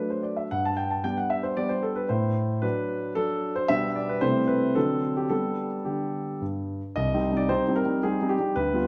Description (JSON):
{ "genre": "classical-period piano sonatina", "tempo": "112 BPM", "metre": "3/4", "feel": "straight", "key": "G major", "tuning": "A4 = 439 Hz", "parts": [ { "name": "warm concert grand piano", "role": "solo", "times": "0.0-8.9 s", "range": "C2 to A5", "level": "-26 LUFS", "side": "equal", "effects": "none" } ], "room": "wet recital hall reverb, RT60 1.5 s", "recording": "none", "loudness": "-27 LUFS", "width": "mono", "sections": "0.0-7.0 A section; 7.0-8.9 B section", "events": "none", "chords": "0.0 D; 0.5 G; 2.1 D7/A; 3.7 G/B; 4.2 Am7/C; 4.8 D7; 5.3 G; 7.0 Cm" }